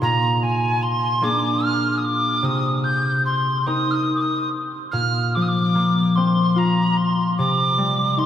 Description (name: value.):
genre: celtic folk, Celtic slow air.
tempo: 50 BPM (dotted quarters).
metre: 6/8.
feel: rubato.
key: unclear.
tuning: A4 = 443 Hz.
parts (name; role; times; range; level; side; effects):
breathy mellow tin whistle; melody; 0.0-8.3 s; Ab5 to G6; -21 LUFS; equal; slapback echo.
concert harp; accompaniment; 0.0-8.3 s; Bb2 to Bb4; -20 LUFS; left 1 dB; none.
room: wet cathedral reverb, RT60 6.2 s.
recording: in a vast, echoing space.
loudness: -18 LUFS.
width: side -10 dB against mid.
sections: 0.0-4.9 A section; 4.9-8.3 B section.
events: none.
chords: 0.1 Bb7; 2.4 Cm7; 4.9 Bbsus2; 7.4 Csus2.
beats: | 0.05 1.24 | 2.44 3.67 | 4.92 6.16 | 7.37.